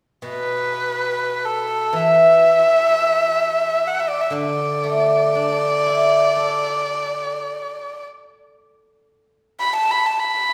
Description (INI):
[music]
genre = chinese traditional, Chinese chamber ensemble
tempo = free time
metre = none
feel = none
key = unclear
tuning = A4 = 440 Hz
[part]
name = steel-string zither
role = accompaniment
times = 0.2-8.4 s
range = B2 to A4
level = -22 LUFS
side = equal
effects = none
[part]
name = warm erhu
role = melody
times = 0.3-10.5 s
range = A4 to B5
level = -21 LUFS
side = equal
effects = none
[sound]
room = wet recital hall reverb, RT60 1.7 s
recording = recorded in a church or concert hall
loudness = -19 LUFS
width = mono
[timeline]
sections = 0.0-10.5 A section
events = none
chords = none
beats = free time